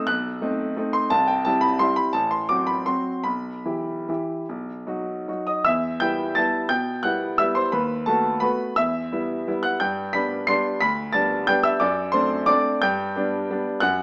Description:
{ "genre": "classical, piano waltz", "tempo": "142-193 BPM", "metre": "3/4", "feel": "rubato", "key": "E minor", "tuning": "A4 = 440 Hz", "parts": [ { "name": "clear concert grand piano", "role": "solo", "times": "0.0-14.0 s", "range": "A1 to C7", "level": "-23 LUFS", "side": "equal", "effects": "none" } ], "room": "light reverb", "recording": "small speaker sound", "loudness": "-23 LUFS", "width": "mono", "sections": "0.0-5.7 A section; 5.7-14.0 B section", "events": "none", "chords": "0.0 B7b9; 1.1 C; 2.1 F#dim/A; 3.3 Em/B; 4.5 B; 5.7 Em; 7.7 B7/D#; 8.8 Em; 9.8 G; 11.8 D7/F#; 12.8 G" }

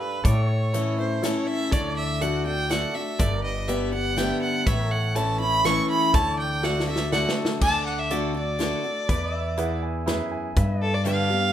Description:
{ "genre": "honky-tonk and classic country", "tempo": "122 BPM", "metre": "3/4", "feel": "straight", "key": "D major", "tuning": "A4 = 440 Hz", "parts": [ { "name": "clear fiddle", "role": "second line", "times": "0.0-7.3 s", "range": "B4 to C#6", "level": "-26 LUFS", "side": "right 2 dB", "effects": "none" }, { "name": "picked steel-string acoustic guitar", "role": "accompaniment", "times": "0.0-11.5 s", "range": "E2 to G4", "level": "-29 LUFS", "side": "left 4 dB", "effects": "none" }, { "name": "warm concert grand piano", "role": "accompaniment", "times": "0.0-11.5 s", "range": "D4 to B5", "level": "-32 LUFS", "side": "right 4 dB", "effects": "none" }, { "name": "pedal steel guitar", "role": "sustained chords", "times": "0.0-11.5 s", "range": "A4 to E5", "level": "-35 LUFS", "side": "right 1 dB", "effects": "none" }, { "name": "upright bass", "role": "bass", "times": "0.2-11.5 s", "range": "G1 to A2", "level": "-27 LUFS", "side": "equal", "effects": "none" }, { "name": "natural country drum kit", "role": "drums", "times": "0.2-11.2 s", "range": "crash cymbal, hi-hat, kick drum, snare drum", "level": "-26 LUFS", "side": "equal", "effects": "none" }, { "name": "rich fiddle", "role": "melody", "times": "7.6-11.5 s", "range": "A4 to A5", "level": "-26 LUFS", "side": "equal", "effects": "none" } ], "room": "light reverb", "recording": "minimal, uncompressed stereo recording", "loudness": "-22 LUFS", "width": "side -10 dB against mid", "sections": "0.0-7.6 A section; 7.6-11.5 A section", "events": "fiddle solo 0.0-7.6, 7.6-11.5; drum fill 6.6-7.6; grand piano fill 9.1-10.6", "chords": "0.2 A; 1.7 D; 3.2 G; 4.7 A; 6.1 D; 9.1 E; 10.6 G" }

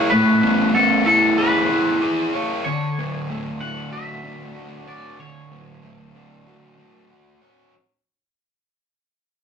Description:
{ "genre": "rock", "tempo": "94 BPM", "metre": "4/4", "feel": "straight", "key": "unclear", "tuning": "A4 = 440 Hz", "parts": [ { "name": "twangy electric guitar", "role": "melody", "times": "0.0-7.1 s", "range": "A4 to F#5", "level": "-21 LUFS", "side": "left 3 dB", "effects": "none" }, { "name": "fuzz guitar", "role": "riff", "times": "0.0-7.7 s", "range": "D3 to C#5", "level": "-20 LUFS", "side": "equal", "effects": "distortion" } ], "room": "wet studio reverb, RT60 0.6 s", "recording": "rough rehearsal-room recording", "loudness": "-16 LUFS", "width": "side -7 dB against mid", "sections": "0.0-7.7 A section", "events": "fade-out 0.0-7.7", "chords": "0.0 Amaj9; 2.6 Dmaj7" }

